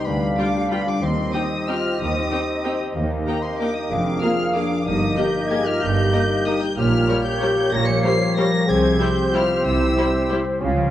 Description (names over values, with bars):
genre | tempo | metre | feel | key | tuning
classical, orchestral ballroom waltz | 188 BPM | 3/4 | uneven beats, rubato | unclear | A4 = 439 Hz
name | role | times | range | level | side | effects
rich chamber violin section | melody | 0.0-10.3 s | Bb5 to Db7 | -28 LUFS | left 1 dB | none
clear clarinet | second line | 0.0-10.9 s | F4 to Ab4 | -31 LUFS | left 1 dB | none
flute section | second line | 0.0-10.9 s | C5 to F5 | -28 LUFS | equal | none
warm bassoon | accompaniment | 0.0-10.9 s | Bb3 to D4 | -28 LUFS | right 2 dB | none
clear French horn section | sustained chords | 0.0-10.3 s | Bb3 to Db5 | -26 LUFS | left 2 dB | none
concert harp | arpeggios | 0.0-10.9 s | F2 to Eb5 | -26 LUFS | left 4 dB | none
clear chamber double bass section | bass | 0.1-10.9 s | F1 to Eb2 | -28 LUFS | right 2 dB | none
rich chamber cello section | bass | 0.1-10.9 s | D2 to Db3 | -27 LUFS | right 3 dB | none
rich symphonic violin section | second line | 0.4-10.4 s | G4 to G5 | -32 LUFS | left 3 dB | none
rich symphonic viola section | accompaniment | 0.4-10.4 s | G3 to Ab4 | -29 LUFS | right 1 dB | none
room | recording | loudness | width
wet recital hall reverb, RT60 1.7 s | worn, warbling old tape, cassette tape, warbly pitch drift | -18 LUFS | side -12 dB against mid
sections
0.0-10.9 A section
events
none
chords
0.1 G7/D; 1.0 Cm/Eb; 3.0 Eb; 3.9 Bb7/F; 4.9 Eb/G; 6.8 Gm7b5/Bb; 8.7 C